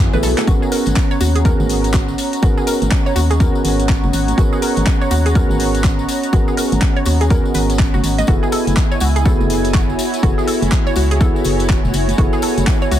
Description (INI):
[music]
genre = deep house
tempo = 123 BPM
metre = 4/4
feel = swing 61% on 16ths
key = G# minor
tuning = A4 = 440 Hz
[part]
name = warm analog pad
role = sustained chords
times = 0.0-13.0 s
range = E4 to A#5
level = -26 LUFS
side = left 1 dB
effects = chorus, sidechain pumping
[part]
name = felt-muted upright piano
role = stabs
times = 0.0-13.0 s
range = B3 to A#4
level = -20 LUFS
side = right 2 dB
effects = sidechain pumping, analog delay
[part]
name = organ-like FM bass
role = bass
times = 0.0-13.0 s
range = E1 to D#2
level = -18 LUFS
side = equal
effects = sidechain pumping
[part]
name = granular cloud pad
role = texture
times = 0.0-13.0 s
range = F#4 to D#5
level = -30 LUFS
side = left 3 dB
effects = built-in reverb, sidechain pumping
[part]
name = analog pluck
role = arpeggios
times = 0.1-13.0 s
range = F#4 to D#5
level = -25 LUFS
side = right 1 dB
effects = chorus, sidechain pumping, tape echo
[part]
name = congas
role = percussion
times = 0.1-12.7 s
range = none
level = -27 LUFS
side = right 6 dB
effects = none
[part]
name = tambourine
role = percussion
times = 0.1-13.0 s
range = none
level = -31 LUFS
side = left 6 dB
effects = none
[part]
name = deep house drum kit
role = drums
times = 0.2-13.0 s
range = handclaps, hi-hat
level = -25 LUFS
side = equal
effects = none
[part]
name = electronic kick drum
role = drums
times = 0.5-12.8 s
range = none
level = -16 LUFS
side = equal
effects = overdrive
[sound]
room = digital ambience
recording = dense, heavily limited modern master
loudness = -13 LUFS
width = side -11 dB against mid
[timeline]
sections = 0.5-13.0 A section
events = drum fill 0.0-0.5; fade-in on ambient pad 0.5-13.0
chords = 0.5 G#m11; 8.3 F#m11